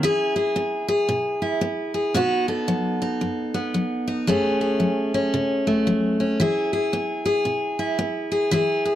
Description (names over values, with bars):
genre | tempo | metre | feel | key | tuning
country | 113 BPM | 4/4 | swing 61% on 8ths | E major | A4 = 436 Hz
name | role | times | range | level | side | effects
picked steel-string acoustic guitar | solo | 0.0-9.0 s | F#2 to A4 | -20 LUFS | equal | none
room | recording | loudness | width
studio ambience | dry, close 1970s-style studio recording | -20 LUFS | side -12 dB against mid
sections
0.0-9.0 A section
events
none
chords
0.0 E; 2.2 B; 4.3 F#madd9; 6.4 E